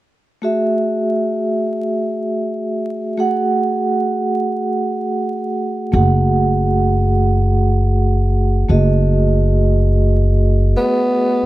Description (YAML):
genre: hip hop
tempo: free time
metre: none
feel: none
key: F# dorian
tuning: A4 = 441 Hz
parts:
  - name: vibraphone with soft mallets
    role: accompaniment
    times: 0.4-11.4 s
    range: A3 to F#5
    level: -18 LUFS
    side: right 1 dB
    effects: plate reverb
  - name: upright bass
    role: bass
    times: 5.9-10.7 s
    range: F#1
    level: -14 LUFS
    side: equal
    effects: none
  - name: growling tenor saxophone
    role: melody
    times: 10.8-11.5 s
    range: B3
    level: -15 LUFS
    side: equal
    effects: plate reverb
room: moderate small room reverb, RT60 0.5 s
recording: dark, warm production, vinyl crackle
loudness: -14 LUFS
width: side -16 dB against mid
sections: 0.4-11.5 A section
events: none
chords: 0.4 F#m9